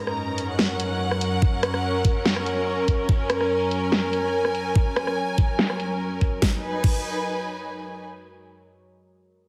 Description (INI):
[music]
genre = heavy wobble dubstep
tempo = 144 BPM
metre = 4/4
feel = half-time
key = unclear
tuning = A4 = 439 Hz
[part]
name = evolving wavetable pad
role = sustained chords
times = 0.0-6.6 s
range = F#2 to C#5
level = -32 LUFS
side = equal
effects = chorus, built-in reverb, sidechain pumping
[part]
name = rich studio string section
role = texture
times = 0.0-8.0 s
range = C#4 to A#5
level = -29 LUFS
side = equal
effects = sidechain pumping
[part]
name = dubstep drum kit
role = drums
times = 0.1-6.9 s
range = crash cymbal, hi-hat, rim click, snare drum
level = -28 LUFS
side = equal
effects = low-pass filter on cymbals, studio ambience, low-pass filter on snare, low-pass filter on hats
[part]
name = electronic kick drum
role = drums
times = 1.4-6.9 s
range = none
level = -23 LUFS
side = equal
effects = studio ambience
[sound]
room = moderate lush hall reverb, RT60 1.8 s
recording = heavily compressed radio sound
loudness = -24 LUFS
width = mono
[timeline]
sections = 0.0-6.4 A section; 6.4-8.1 B section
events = none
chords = 0.0 F#; 6.4 G#m